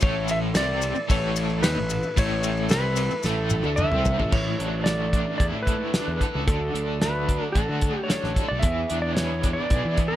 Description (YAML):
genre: psychedelic rock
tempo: 112 BPM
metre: 4/4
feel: straight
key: unclear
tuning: A4 = 440 Hz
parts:
  - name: clean lap steel guitar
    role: melody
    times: 0.0-10.2 s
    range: A4 to E5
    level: -28 LUFS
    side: equal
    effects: tape echo
  - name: bright tonewheel organ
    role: sustained chords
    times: 0.0-10.2 s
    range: E3 to A4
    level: -38 LUFS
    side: right 5 dB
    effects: none
  - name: crunchy overdriven guitar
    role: riff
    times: 0.0-10.2 s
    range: A2 to A4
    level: -29 LUFS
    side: left 1 dB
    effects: tremolo
  - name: fuzz picked electric bass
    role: bass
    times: 0.0-10.1 s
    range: A1 to E3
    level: -27 LUFS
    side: equal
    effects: overdrive
  - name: cloth-damped thuddy drum kit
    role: drums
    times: 0.0-10.1 s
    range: crash cymbal, hi-hat, kick drum, ride cymbal, snare drum, toms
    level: -25 LUFS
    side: equal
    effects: none
  - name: maracas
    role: percussion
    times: 0.0-4.2 s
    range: none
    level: -35 LUFS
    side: left 9 dB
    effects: none
room: light reverb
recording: none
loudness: -22 LUFS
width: side -13 dB against mid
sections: 0.0-4.3 A section; 4.3-10.2 B section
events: drum fill 3.3-4.3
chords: 0.0 A; 4.3 Asus4; 6.5 D; 8.6 E7